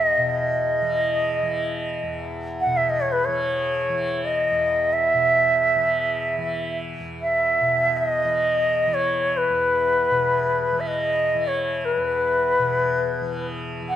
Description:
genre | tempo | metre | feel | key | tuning
indian classical, Hindustani | free time | none | none | unclear | A4 = 442 Hz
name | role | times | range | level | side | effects
bansuri | melody | 0.0-14.0 s | B4 to F#5 | -20 LUFS | equal | none
tanpura | drone | 0.0-14.0 s | E2 to E3 | -29 LUFS | left 2 dB | none
room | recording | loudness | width
moderate scoring stage reverb, RT60 1.6 s | none | -20 LUFS | side -11 dB against mid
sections
0.0-14.0 A section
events
none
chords
none

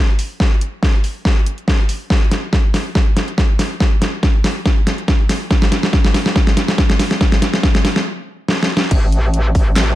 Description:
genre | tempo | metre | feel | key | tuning
heavy wobble dubstep | 141 BPM | 4/4 | swing 54% on 16ths, half-time | unclear | A4 = 440 Hz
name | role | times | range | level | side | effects
dubstep drum kit | drums | 0.2-9.9 s | crash cymbal, handclaps, hi-hat, snare drum | -17 LUFS | equal | overdrive
electronic kick drum | drums | 0.4-9.6 s | none | -15 LUFS | equal | overdrive
metallic wobble bass | bass | 8.9-10.0 s | A1 | -16 LUFS | equal | chorus, overdrive
room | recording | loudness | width
light reverb | dark, warm production | -13 LUFS | side -15 dB against mid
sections
0.0-8.9 A section; 8.9-10.0 B section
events
build-up 0.0-8.9; drum fill 0.0-8.1, 8.5-8.9; stop 8.1-8.9; drop 8.9-10.0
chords
none

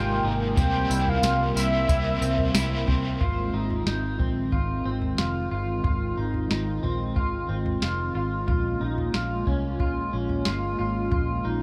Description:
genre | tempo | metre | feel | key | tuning
dream pop | 91 BPM | 4/4 | straight | Ab major | A4 = 441 Hz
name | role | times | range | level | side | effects
warm velvety synth lead | melody | 0.0-2.9 s | E5 to G5 | -31 LUFS | equal | chorus, digital delay
cranked stack guitar | accompaniment | 0.0-3.7 s | C3 to C5 | -38 LUFS | equal | overdrive, harmonic tremolo, lush chorus
hollow soft pad | sustained chords | 0.0-11.6 s | C3 to Bb4 | -32 LUFS | equal | chorus
clean electric guitar | arpeggios | 0.0-11.6 s | C4 to F4 | -34 LUFS | equal | lush chorus, digital delay
vintage muted fingered electric bass | bass | 0.0-11.6 s | F1 to C2 | -32 LUFS | equal | none
soft vintage rhythm box | drums | 0.6-11.3 s | kick drum, snare drum, tambourine, toms | -30 LUFS | equal | none
room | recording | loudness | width
light reverb | none | -25 LUFS | mono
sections
0.0-3.2 A section; 3.2-11.6 B section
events
none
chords
0.0 Abmaj9; 0.6 C7; 3.2 Ab6; 8.5 Bbm7

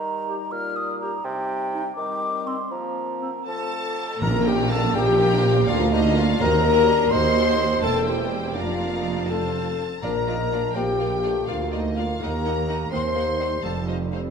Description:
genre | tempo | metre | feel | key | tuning
classical, dramatic, fast romantic movement for symphony orchestra | 82 BPM (dotted quarters) | 6/8 | straight | Bb major | A4 = 443 Hz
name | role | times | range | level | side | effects
mellow hollow concert flute | second line | 0.0-14.3 s | C5 to F6 | -30 LUFS | right 1 dB | none
mellow bassoon | accompaniment | 0.0-14.3 s | Bb2 to Eb4 | -32 LUFS | right 2 dB | none
mellow French horn section | sustained chords | 0.0-14.3 s | G3 to C5 | -26 LUFS | left 5 dB | none
dark clarinet | second line | 0.3-14.3 s | C4 to C5 | -32 LUFS | left 5 dB | none
cymbal swell and tam-tam | percussion | 1.3-6.1 s | none | -36 LUFS | left 2 dB | none
warm symphonic violin section | melody | 3.5-14.2 s | C5 to C6 | -32 LUFS | left 2 dB | none
clear symphonic double bass section | bass | 4.2-14.3 s | E1 to Eb2 | -27 LUFS | right 3 dB | none
clear tuba | bass | 4.2-14.3 s | E1 to Eb2 | -31 LUFS | right 5 dB | none
rich symphonic cello section | bass | 4.2-14.3 s | D2 to Bb2 | -29 LUFS | right 4 dB | none
timpani | percussion | 4.2-4.9, 10.0-10.7 s | Bb2 | -32 LUFS | left 2 dB | none
warm symphonic violin section | second line | 4.5-14.2 s | C5 to Bb5 | -34 LUFS | left 2 dB | none
warm symphonic viola section | accompaniment | 4.5-14.2 s | F3 to Gb4 | -31 LUFS | right 2 dB | none
room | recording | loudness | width
wet scoring stage reverb, RT60 1.5 s | none | -20 LUFS | side -6 dB against mid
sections
0.0-4.2 A section; 4.2-14.3 B section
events
band accent 4.2-4.7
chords
0.0 Eb; 1.3 Cm; 2.0 Cm/Eb; 2.7 Fsus4; 3.5 F; 4.2 Bb; 5.7 Bb/D; 6.4 Ebm; 7.1 Cm7b5/Eb; 7.8 C7/E; 8.6 Bb/F; 9.3 F; 10.0 Bb; 11.5 Bb/D; 12.2 Ebm; 12.9 Cm7b5/Eb; 13.6 F5

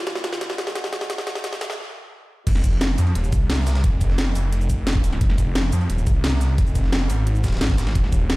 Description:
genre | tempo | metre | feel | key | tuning
dark technical drum and bass | 175 BPM | 4/4 | straight | F minor | A4 = 445 Hz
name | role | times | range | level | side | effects
snarling distorted saw bass | bass | 0.0-8.4 s | Eb1 to F2 | -21 LUFS | equal | distortion, overdrive, sidechain pumping
drum and bass drum kit | drums | 0.1-8.4 s | cabasa, crash cymbal, hi-hat, snare drum | -26 LUFS | equal | overdrive
breakbeat sampler-style drum kit | drums | 2.5-8.4 s | hi-hat, snare drum | -37 LUFS | equal | none
electronic kick drum | drums | 2.5-8.2 s | none | -20 LUFS | equal | none
room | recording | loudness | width
little or no reverb | played on a big sound system in a bare room, stone room reverb, high-pass filter | -19 LUFS | side -21 dB against mid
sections
0.0-2.5 A section; 2.5-8.4 B section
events
build-up 0.0-2.5; drum fill 0.0-1.8; stop 1.8-2.5; drop 2.5-8.4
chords
none

